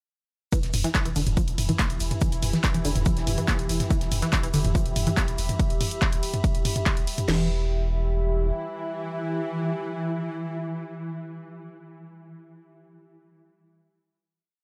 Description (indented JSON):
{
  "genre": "driving peak-time techno",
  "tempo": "142 BPM",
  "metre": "4/4",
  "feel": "straight",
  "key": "E minor",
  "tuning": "A4 = 440 Hz",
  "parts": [
    { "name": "tight sequenced synth", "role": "riff", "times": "0.5-7.5 s", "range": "D3 to A#3", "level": "-31 LUFS", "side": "equal", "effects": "chorus, overdrive, sidechain pumping, dub echo" },
    { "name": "swarming drone", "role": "drone", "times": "1.3-11.5 s", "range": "E3 to E4", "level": "-36 LUFS", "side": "equal", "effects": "built-in reverb, sidechain pumping" },
    { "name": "cloth-damped thuddy drum kit", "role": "drums", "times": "0.5-5.5 s", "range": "hi-hat, shaker, snare drum", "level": "-42 LUFS", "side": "equal", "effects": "none" },
    { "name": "punchy analog drum machine", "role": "drums", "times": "0.5-7.3 s", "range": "handclaps, hi-hat, ride cymbal, toms", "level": "-30 LUFS", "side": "equal", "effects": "none" },
    { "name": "techno drum kit", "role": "drums", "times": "0.5-7.4 s", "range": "crash cymbal, kick drum, snare drum", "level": "-28 LUFS", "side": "equal", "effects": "overdrive" },
    { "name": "deep dark ambient pad", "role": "texture", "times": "2.0-11.4 s", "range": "G4 to B5", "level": "-37 LUFS", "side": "equal", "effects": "chorus, built-in reverb, sidechain pumping" },
    { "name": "saturated sub bass", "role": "bass", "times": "0.6-8.5 s", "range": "E1", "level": "-30 LUFS", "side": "equal", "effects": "sidechain pumping, low-pass filter" }
  ],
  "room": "light reverb",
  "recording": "none",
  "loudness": "-26 LUFS",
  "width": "mono",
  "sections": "0.5-7.3 drop; 7.3-10.7 final chord",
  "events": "drop 0.5-7.3",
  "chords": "0.5 Em",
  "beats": "| 0.52 0.95 1.37 1.79 | 2.21 2.64 3.06 3.48 | 3.90 4.33 4.75 5.17 | 5.59 6.02 6.44 6.86 | 7.29 7.71 8.13 8.55 | 8.97 9.40 9.82 10.24"
}